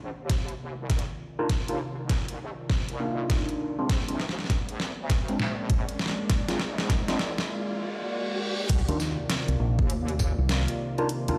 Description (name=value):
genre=glitch hop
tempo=100 BPM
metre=4/4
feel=swing 63% on 16ths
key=C minor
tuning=A4 = 438 Hz
part: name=warm analog pad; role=sustained chords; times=0.0-11.4 s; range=C3 to D5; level=-37 LUFS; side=equal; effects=chorus, sidechain pumping
part: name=wobble bass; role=bass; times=0.0-10.4 s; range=Ab1 to Eb2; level=-36 LUFS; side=equal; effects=chorus, tube saturation, high-pass filter
part: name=riser and reverse cymbal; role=sound effects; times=1.1-8.7 s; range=none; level=-41 LUFS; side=equal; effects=none
part: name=electronic kick drum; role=drums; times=0.3-10.3 s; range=none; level=-28 LUFS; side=equal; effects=overdrive
part: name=pop drum kit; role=drums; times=0.3-11.4 s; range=crash cymbal, hi-hat, snare drum, tambourine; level=-34 LUFS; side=equal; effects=overdrive
part: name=overdriven tine electric piano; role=stabs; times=1.4-11.4 s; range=Ab3 to F4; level=-34 LUFS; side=equal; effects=phaser, sidechain pumping, low-pass filter, digital delay
part: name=fingered electric bass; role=bass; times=8.9-11.4 s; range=Bb1 to Eb2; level=-28 LUFS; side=equal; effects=none
room=light reverb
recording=played on a big sound system in a bare room, stone room reverb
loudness=-28 LUFS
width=mono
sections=0.0-8.7 A section; 8.7-11.4 B section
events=build-up 0.0-8.7; drum fill 0.0-7.5; filter sweep on tine electric piano 0.0-8.7; filter sweep on analog synth pad 0.0-8.7; riser 1.1-8.7; break 7.5-8.7; reverse cymbal 7.5-8.7; drop 8.7-11.4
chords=0.0 Cm11; 3.9 Bb7; 8.7 Cm11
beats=0.30 0.90 | 1.50 2.10 2.70 3.30 | 3.90 4.50 5.10 5.70 | 6.30 6.90 7.50 8.10 | 8.70 9.30 9.90 10.50 | 11.10